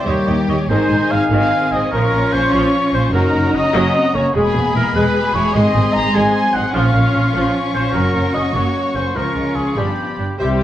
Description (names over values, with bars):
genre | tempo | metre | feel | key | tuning
cinematic, heroic adventure film score | 99 BPM (dotted quarters) | 6/8 | straight | Ab mixolydian | A4 = 440 Hz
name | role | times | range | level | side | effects
clear studio violin section | second line | 0.0-10.6 s | F4 to E5 | -27 LUFS | left 2 dB | none
hollow large flute ensemble | second line | 0.0-0.7, 10.4-10.6 s | G4 to E5 | -28 LUFS | left 4 dB | none
clear trombone section | sustained chords | 0.0-0.5, 10.4-10.6 s | Eb3 to C4 | -31 LUFS | right 2 dB | none
dark French horn section | sustained chords | 0.0-10.6 s | B2 to Eb4 | -23 LUFS | left 2 dB | none
bright trumpet section | stabs | 0.0-10.6 s | G4 to Bb5 | -22 LUFS | equal | none
warm symphonic cello section | bass | 0.0-10.6 s | C3 to Eb4 | -23 LUFS | right 1 dB | none
rich symphonic violin section | melody | 0.1-10.6 s | G4 to Db6 | -26 LUFS | left 5 dB | none
clear oboe | second line | 0.1-10.6 s | G4 to Bb5 | -22 LUFS | right 1 dB | none
rich symphonic viola section | accompaniment | 0.1-10.6 s | Eb3 to Eb5 | -23 LUFS | equal | none
mellow tuba | bass | 0.1-0.6 s | Eb2 | -24 LUFS | right 2 dB | none
warm symphonic double bass section | bass | 0.1-10.6 s | E1 to Eb2 | -20 LUFS | right 1 dB | none
clear clarinet | second line | 10.4-10.6 s | G4 | -22 LUFS | left 2 dB | none
room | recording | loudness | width
wet recital hall reverb, RT60 1.4 s | worn, warbling old tape, cassette tape, warbly pitch drift | -14 LUFS | side -12 dB against mid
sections
0.7-10.4 A section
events
none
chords
0.1 Eb7; 0.7 Ab; 1.9 Bbm; 3.1 Gb; 4.3 E; 5.5 Ab; 6.7 Bbm; 7.9 Gb; 9.2 Db; 9.8 G7